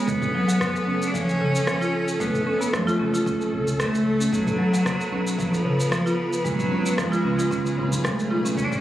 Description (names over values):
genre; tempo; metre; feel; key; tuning
organic downtempo; 113 BPM; 4/4; swing 53% on 16ths; F# harmonic minor; A4 = 436 Hz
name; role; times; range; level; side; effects
bright cello; melody; 0.0-8.8 s; E#3 to D4; -26 LUFS; equal; ping-pong delay
warm chamber string section; sustained chords; 0.0-8.8 s; C#3 to C#5; -29 LUFS; equal; sidechain pumping
buzzing marimba with medium mallets; arpeggios; 0.0-8.6 s; C#3 to E#4; -25 LUFS; equal; vintage 12-bit sampler grit, digital delay
round analog bass; bass; 0.1-8.7 s; F#1 to F#2; -30 LUFS; equal; tube saturation
deep house drum kit; drums; 0.1-8.8 s; rim click, shaker, toms; -30 LUFS; equal; none
electronic kick drum; drums; 0.1-8.7 s; none; -35 LUFS; equal; none
room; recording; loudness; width
moderate lush hall reverb, RT60 1.7 s, digital ambience; recorded on a phone in the room, club reverb; -21 LUFS; side -13 dB against mid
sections
0.1-8.8 A section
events
none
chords
0.1 F#madd9; 4.3 B5; 6.5 C#7